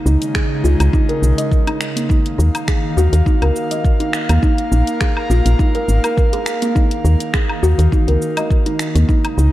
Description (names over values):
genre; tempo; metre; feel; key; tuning
organic downtempo; 103 BPM; 4/4; swing 55% on 16ths; unclear; A4 = 443 Hz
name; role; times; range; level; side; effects
airy breathy pad; sustained chords; 0.0-9.5 s; Db3 to F5; -23 LUFS; left 1 dB; chorus, sidechain pumping
kalimba; arpeggios; 0.0-9.5 s; Bb3 to Eb5; -20 LUFS; right 1 dB; digital delay
woody FM bass; bass; 0.1-9.5 s; Ab1 to Eb2; -12 LUFS; equal; none
afro-pop drum kit; drums; 0.1-9.5 s; cabasa, finger snaps, hi-hat, woodblock; -26 LUFS; left 1 dB; none
electronic kick drum; drums; 0.4-9.2 s; none; -16 LUFS; equal; none
room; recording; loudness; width
light reverb, digital ambience; dark, warm production; -13 LUFS; side -15 dB against mid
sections
0.0-9.5 A section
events
none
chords
0.0 Db; 2.1 Eb5; 4.4 Bb5; 6.8 Eb5